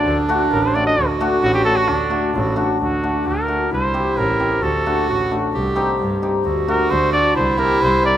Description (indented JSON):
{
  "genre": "klezmer",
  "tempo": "132 BPM",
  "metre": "2/4",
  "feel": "straight",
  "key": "unclear",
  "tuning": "A4 = 440 Hz",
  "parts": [
    { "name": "warm cornet", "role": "melody", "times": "0.0-8.2 s", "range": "D4 to Eb5", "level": "-20 LUFS", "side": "equal", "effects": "none" },
    { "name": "clear clarinet", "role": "second line", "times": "0.0-8.2 s", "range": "D4 to G4", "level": "-22 LUFS", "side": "right 4 dB", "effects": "none" },
    { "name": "bright double bass", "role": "bass", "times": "0.1-8.1 s", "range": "A1 to G2", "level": "-24 LUFS", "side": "equal", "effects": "none" },
    { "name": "cimbalom", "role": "accompaniment", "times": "0.3-8.1 s", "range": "A3 to Bb4", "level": "-21 LUFS", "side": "left 3 dB", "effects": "none" }
  ],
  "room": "moderate lush hall reverb, RT60 3.1 s",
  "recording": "rough home demo mix",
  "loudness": "-16 LUFS",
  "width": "side -11 dB against mid",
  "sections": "0.0-2.8 A section; 2.8-8.2 B section",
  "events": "cornet solo 2.8-8.2",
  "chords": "0.0 D; 3.7 C; 4.6 D; 5.5 Cm; 6.4 D; 7.4 C",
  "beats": "| 0.07 0.52 | 0.98 1.43 | 1.89 2.35 | 2.80 3.26 | 3.71 4.17 | 4.62 5.08 | 5.54 5.99 | 6.45 6.90 | 7.35 7.81"
}